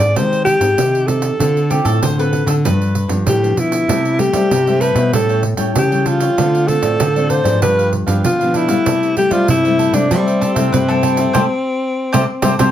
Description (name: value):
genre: samba and choro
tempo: 96 BPM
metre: 4/4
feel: straight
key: C major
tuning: A4 = 440 Hz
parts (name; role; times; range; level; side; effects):
- breathy alto saxophone; melody; 0.0-12.7 s; C4 to D5; -16 LUFS; left 1 dB; plate reverb
- nylon-string guitar; accompaniment; 0.0-12.7 s; G2 to A4; -22 LUFS; left 4 dB; none
- nylon-string guitar; bass; 0.0-12.7 s; G2 to G3; -18 LUFS; equal; none
- pandeiro; percussion; 0.2-12.7 s; none; -21 LUFS; right 4 dB; none
- mandolin; second line; 1.7-3.1, 10.4-12.7 s; G4 to C5; -21 LUFS; equal; none
- cavaquinho; accompaniment; 3.9-12.7 s; D4 to G5; -24 LUFS; right 5 dB; none
room: light reverb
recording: none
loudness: -13 LUFS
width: side -11 dB against mid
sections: 0.0-12.7 A section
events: band accent 11.4-12.7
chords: 0.0 Abmaj7; 1.4 Dm7; 2.6 G7; 3.9 C6; 5.1 A7; 6.4 Dm7; 7.6 G7; 8.9 C6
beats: 0.15 0.78 | 1.40 2.02 2.64 3.26 | 3.89 4.51 5.13 5.75 | 6.37 7.00 7.62 8.24 | 8.86 9.48 10.11 10.73 | 11.35 11.97 12.60